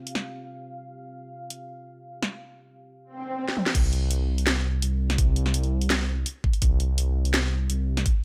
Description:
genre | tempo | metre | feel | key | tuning
half-time drum and bass | 167 BPM | 4/4 | half-time | unclear | A4 = 440 Hz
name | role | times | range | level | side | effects
deep dark ambient pad | sustained chords | 0.0-3.7 s | C4 to F5 | -46 LUFS | equal | chorus, built-in reverb, sidechain pumping
drum and bass drum kit | drums | 0.1-8.1 s | crash cymbal, hi-hat, snare drum, toms | -29 LUFS | equal | none
swell | sound effects | 3.1-3.7 s | none | -36 LUFS | equal | none
dark detuned saw bass | bass | 3.7-8.0 s | C2 | -26 LUFS | equal | none
electronic kick drum | drums | 3.7-8.1 s | none | -25 LUFS | equal | none
room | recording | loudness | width
little or no reverb | none | -25 LUFS | mono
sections
0.0-3.7 A section; 3.7-8.2 B section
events
filter sweep on ambient pad 0.0-3.7; swell 3.1-3.7; drum fill 3.5; drop 3.7-8.2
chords
0.0 C5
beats
0.15 0.51 | 0.87 1.23 1.59 1.95 | 2.31 2.67 3.03 3.39 | 3.75 4.11 4.46 4.83 | 5.18 5.54 5.90 6.26 | 6.62 6.98 7.34 7.70 | 8.06

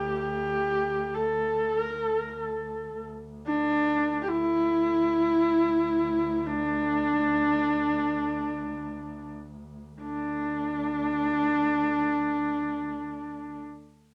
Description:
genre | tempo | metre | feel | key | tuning
mongolian traditional, Mongolian folk | free time | none | none | unclear | A4 = 443 Hz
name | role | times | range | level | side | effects
clear horsehead fiddle | melody | 0.0-13.6 s | D4 to A4 | -28 LUFS | equal | none
warm double bass | drone | 0.0-13.6 s | D2 | -41 LUFS | equal | none
room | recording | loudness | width
wet studio reverb, RT60 0.6 s | none | -27 LUFS | mono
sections
0.0-10.0 A section; 10.0-14.1 B section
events
slowing down 3.0-10.0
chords
none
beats
free time

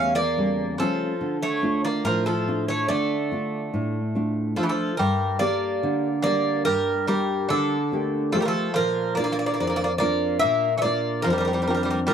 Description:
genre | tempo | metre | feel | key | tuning
greek folk, Greek bouzouki band | 143 BPM (eighths) | 9/8 | straight | unclear | A4 = 438 Hz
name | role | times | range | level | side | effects
Greek bouzouki | melody | 0.0-12.1 s | G4 to F5 | -25 LUFS | equal | none
Greek bouzouki | second line | 0.0-12.1 s | D3 to C#4 | -28 LUFS | right 1 dB | none
nylon-string guitar | accompaniment | 0.0-12.1 s | E2 to A4 | -25 LUFS | equal | none
room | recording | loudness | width
light reverb | dry, close 1970s-style studio recording | -21 LUFS | side -8 dB against mid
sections
0.0-5.0 A section; 5.0-12.1 B section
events
none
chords
0.0 A7; 1.2 Dm; 5.0 Gmadd9; 8.7 Bb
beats
0.35 0.77 | 1.19 1.61 2.03 2.45 2.88 3.29 3.72 4.14 4.56 | 4.98 5.40 5.82 6.24 6.66 7.07 7.49 7.91 8.33 | 8.75 9.17 9.59 10.00 10.42 10.84 11.26 11.67 12.09

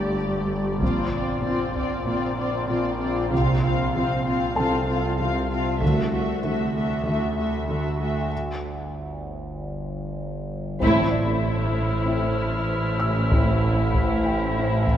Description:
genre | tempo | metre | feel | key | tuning
cinematic, suspense film score | 96 BPM | 4/4 | straight | A phrygian | A4 = 441 Hz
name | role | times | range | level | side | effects
muted studio violin section | melody | 0.0-15.0 s | C5 to F5 | -32 LUFS | left 3 dB | none
muted studio viola section | accompaniment | 0.0-15.0 s | A3 to G4 | -27 LUFS | equal | none
muted studio cello section | bass | 0.0-15.0 s | G2 to D3 | -28 LUFS | right 2 dB | none
overtone-sweeping drone | drone | 0.0-15.0 s | G1 to D2 | -29 LUFS | equal | chorus, built-in reverb
felt-muted upright piano | texture | 0.0-15.0 s | A4 to E6 | -34 LUFS | left 2 dB | none
muted studio double bass section | bass | 0.8-6.3, 10.8-15.0 s | A1 to D2 | -28 LUFS | right 1 dB | none
solo taiko drums | drums | 0.8-2.0, 5.8-7.0, 10.8-15.0 s | none | -26 LUFS | equal | none
muted studio violin section | second line | 10.8-15.0 s | E4 | -28 LUFS | left 1 dB | none
mellow French horn section | sustained chords | 10.8-14.8 s | C4 to E4 | -31 LUFS | left 3 dB | none
muted studio violin section | texture | 10.8-15.0 s | E6 to B6 | -34 LUFS | equal | none
room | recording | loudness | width
moderate scoring stage reverb, RT60 2.0 s | dark, warm production | -21 LUFS | side -10 dB against mid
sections
0.0-10.8 A section; 10.8-15.0 B section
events
break 8.3-10.8; band accent 10.8-11.4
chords
0.0 Gsus2; 0.8 Bbadd9; 3.3 Csus4; 5.8 Dadd9; 8.3 N.C.; 10.8 Am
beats
0.19 | 0.81 1.44 2.06 2.69 | 3.31 3.94 4.56 5.19 | 5.81 6.44 7.06 7.69 | 8.31 8.94 9.56 10.19 | 10.81 11.44 12.06 12.69 | 13.31 13.94 14.56

